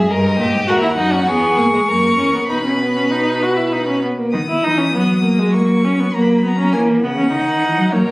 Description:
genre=classical, baroque-style fugue for string quartet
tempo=100 BPM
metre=3/4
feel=straight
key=B major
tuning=A4 = 442 Hz
part: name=dark violin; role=melody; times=0.0-8.1 s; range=C#5 to D#6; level=-22 LUFS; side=left 2 dB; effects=none
part: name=rich violin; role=second line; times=0.0-4.0, 7.9-8.1 s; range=F#4 to B4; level=-20 LUFS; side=equal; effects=none
part: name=warm cello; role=bass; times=0.0-8.1 s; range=D#2 to F#3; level=-19 LUFS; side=equal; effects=none
part: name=warm viola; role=accompaniment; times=0.7-8.1 s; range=G#3 to F#4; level=-17 LUFS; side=equal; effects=none
room=light reverb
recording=recorded on a phone in the room, club reverb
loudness=-13 LUFS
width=side -22 dB against mid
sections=0.0-4.3 A section; 4.3-8.1 B section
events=none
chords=0.1 D#/G; 0.7 D#m; 1.3 E; 1.9 F#7; 2.5 B; 5.5 F#; 6.1 F#7; 7.3 D#m

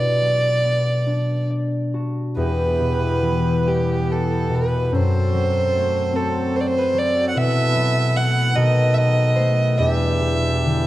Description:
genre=celtic folk, Celtic slow air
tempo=49 BPM (dotted quarters)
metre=6/8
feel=uneven beats, rubato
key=E minor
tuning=A4 = 441 Hz
part: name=dark fiddle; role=melody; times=0.0-10.9 s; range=G4 to F#5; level=-22 LUFS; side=right 1 dB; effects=none
part: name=concert harp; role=accompaniment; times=0.0-10.9 s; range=E2 to A5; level=-20 LUFS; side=left 1 dB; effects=none
part: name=hand-pumped harmonium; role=sustained chords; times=2.4-10.9 s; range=D#3 to A4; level=-27 LUFS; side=right 1 dB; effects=none
room=moderate scoring stage reverb, RT60 1.4 s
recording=dark, warm production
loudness=-17 LUFS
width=side -15 dB against mid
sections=0.0-2.4 A section; 2.4-10.9 B section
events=harp fill 1.1-2.4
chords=0.0 Bm; 2.4 Em; 4.9 F#dim; 7.3 B7sus4; 8.6 B7; 9.8 Em7

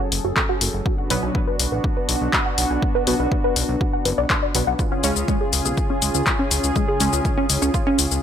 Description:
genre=melodic techno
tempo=122 BPM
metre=4/4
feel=straight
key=unclear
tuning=A4 = 440 Hz
part: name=warm analog pad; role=sustained chords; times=0.0-8.2 s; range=C#3 to A4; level=-26 LUFS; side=equal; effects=lush chorus, sidechain pumping
part: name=tight sequenced synth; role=arpeggios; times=0.0-8.0 s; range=G#3 to G#5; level=-25 LUFS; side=equal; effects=chorus, phaser, sidechain pumping, dub echo
part: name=fat analog bass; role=bass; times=0.1-8.2 s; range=F#1 to C#2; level=-24 LUFS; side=equal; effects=tube saturation, sidechain pumping
part: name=punchy analog drum machine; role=drums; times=0.1-8.2 s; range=handclaps, hi-hat, shaker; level=-22 LUFS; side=left 4 dB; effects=none
part: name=electronic kick drum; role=drums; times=0.4-7.8 s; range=none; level=-24 LUFS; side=equal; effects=none
part: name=synth brass stab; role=stabs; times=1.1-7.1 s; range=B2 to C#4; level=-27 LUFS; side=right 1 dB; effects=chorus, sidechain pumping, dub echo
room=light reverb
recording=none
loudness=-18 LUFS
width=side -9 dB against mid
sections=0.0-8.2 A section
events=filter sweep on synth arpeggio sound 0.0-8.2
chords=0.0 F#madd9; 0.9 Bm; 4.8 C#

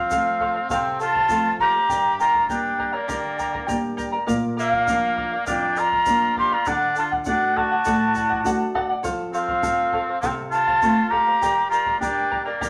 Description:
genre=andean folk, Andean ensemble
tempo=101 BPM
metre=4/4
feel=straight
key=G minor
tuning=A4 = 442 Hz
part: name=reedy large quena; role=melody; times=0.0-12.7 s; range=D5 to C6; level=-24 LUFS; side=equal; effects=none
part: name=clear oboe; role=second line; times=0.0-12.7 s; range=Bb3 to G4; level=-29 LUFS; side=equal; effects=none
part: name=charango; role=accompaniment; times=0.0-12.7 s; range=G4 to Bb5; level=-30 LUFS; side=equal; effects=none
part: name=flamenco guitar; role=accompaniment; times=0.0-12.7 s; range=F2 to Bb4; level=-31 LUFS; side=equal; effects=none
part: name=bombo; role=percussion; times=0.1-12.7 s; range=none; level=-39 LUFS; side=equal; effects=none
part: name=egg shaker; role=percussion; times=0.1-12.7 s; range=none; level=-44 LUFS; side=equal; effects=none
room=wet studio reverb, RT60 0.7 s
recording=none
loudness=-22 LUFS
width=mono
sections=0.0-12.7 A section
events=none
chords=0.0 F; 1.9 Gm; 4.3 Bb; 6.7 D; 9.0 F; 11.4 Gm

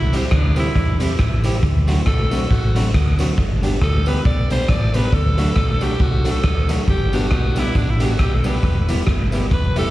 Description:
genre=ska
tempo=137 BPM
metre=4/4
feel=swing 58% on 8ths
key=D mixolydian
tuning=A4 = 441 Hz
part: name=raspy alto saxophone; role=melody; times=0.0-9.9 s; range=C4 to D5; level=-26 LUFS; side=equal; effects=dub echo, slapback echo
part: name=fingered electric bass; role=bass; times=0.0-9.9 s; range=E1 to E2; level=-19 LUFS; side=equal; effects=none
part: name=electric guitar at the edge of break-up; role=accompaniment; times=0.1-9.9 s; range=F#3 to G4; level=-27 LUFS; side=right 2 dB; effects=analog chorus
part: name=dark upright piano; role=stabs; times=0.1-9.9 s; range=A3 to G4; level=-29 LUFS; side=left 3 dB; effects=dub echo
part: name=raw garage drum kit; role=drums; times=0.1-9.8 s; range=hi-hat, kick drum, rim click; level=-20 LUFS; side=equal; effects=none
part: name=tambourine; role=percussion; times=0.1-9.8 s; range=none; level=-44 LUFS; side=left 3 dB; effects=none
room=little or no reverb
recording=live gig heard through the venue's PA, recital hall reverb, vinyl crackle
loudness=-16 LUFS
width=side -16 dB against mid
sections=0.0-9.9 A section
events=alto saxophone solo 0.0-9.9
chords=0.0 C; 1.6 D7; 3.4 G; 5.1 D; 6.9 G; 8.6 Em

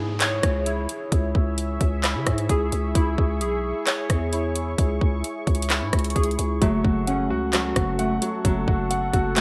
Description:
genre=hip hop, trap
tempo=131 BPM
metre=4/4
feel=half-time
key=C# minor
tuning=A4 = 440 Hz
part: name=deep dark ambient pad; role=sustained chords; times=0.8-9.4 s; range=G#4 to C#6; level=-36 LUFS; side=equal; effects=chorus, built-in reverb
part: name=warbly lo-fi synth keys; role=arpeggios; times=0.0-9.4 s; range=A3 to C#5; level=-30 LUFS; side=equal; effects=chorus, low-pass filter, digital delay
part: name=growling 808-style bass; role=bass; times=0.0-9.4 s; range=F#1 to C#3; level=-29 LUFS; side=equal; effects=none
part: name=downlifter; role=sound effects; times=0.0-3.0 s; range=none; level=-46 LUFS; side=equal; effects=none
part: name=trap drum kit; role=drums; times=0.2-9.4 s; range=handclaps, hi-hat, kick drum, rim click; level=-25 LUFS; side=equal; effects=none
part: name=clear concert grand piano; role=accompaniment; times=6.6-9.4 s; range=F#3 to F#5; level=-29 LUFS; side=equal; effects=low-pass filter
room=light reverb, digital ambience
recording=bright 1980s-style digital production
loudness=-23 LUFS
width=mono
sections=0.0-9.4 A section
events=none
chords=0.0 C#m; 6.6 F#m

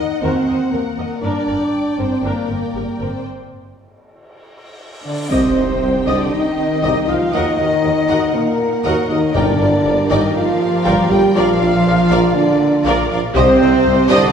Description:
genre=cinematic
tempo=119 BPM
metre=4/4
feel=straight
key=C minor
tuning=A4 = 440 Hz
part: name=rich studio violin section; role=melody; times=0.0-14.3 s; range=Bb4 to G5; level=-25 LUFS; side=left 4 dB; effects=none
part: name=warm symphonic violin section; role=second line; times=0.0-14.3 s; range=Bb4 to G5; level=-25 LUFS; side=left 2 dB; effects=none
part: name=dark studio viola section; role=accompaniment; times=0.0-14.3 s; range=D4 to Eb5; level=-25 LUFS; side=right 1 dB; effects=none
part: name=mellow French horn section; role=sustained chords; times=0.0-14.3 s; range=Bb3 to G4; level=-18 LUFS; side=equal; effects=none
part: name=dark symphonic cello section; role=bass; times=0.0-14.3 s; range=G2 to G3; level=-23 LUFS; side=right 2 dB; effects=none
part: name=rich symphonic double bass section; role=bass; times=0.0-14.2 s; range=G1 to Eb2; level=-24 LUFS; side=right 2 dB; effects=none
part: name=cymbal swell and impact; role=sound effects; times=4.4-7.3 s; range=none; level=-30 LUFS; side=equal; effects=none
part: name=warm trombone section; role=sustained chords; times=5.0-14.3 s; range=Bb2 to G3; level=-24 LUFS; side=right 3 dB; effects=none
part: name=mellow concert flute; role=second line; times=5.1-14.3 s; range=Bb4 to G5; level=-23 LUFS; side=left 1 dB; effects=none
part: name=warm symphonic string section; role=sustained chords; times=5.3-14.3 s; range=G3 to G5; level=-26 LUFS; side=equal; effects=none
part: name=clear tuba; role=bass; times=5.3-14.2 s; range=G1 to Eb2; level=-24 LUFS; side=right 3 dB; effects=none
part: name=timpani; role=percussion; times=9.3-10.1 s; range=G2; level=-24 LUFS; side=equal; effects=none
room=wet recital hall reverb, RT60 1.6 s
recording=recorded in a church or concert hall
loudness=-13 LUFS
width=side -7 dB against mid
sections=0.0-5.3 A section; 5.3-14.3 B section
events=break 3.3-5.3; cymbal swell 4.4-5.3; impact 5.3-7.3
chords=0.0 Ebm; 1.2 Gm; 3.3 N.C.; 5.3 Cm; 7.3 Ebm; 9.3 Gm; 11.4 Bb; 13.4 Cm

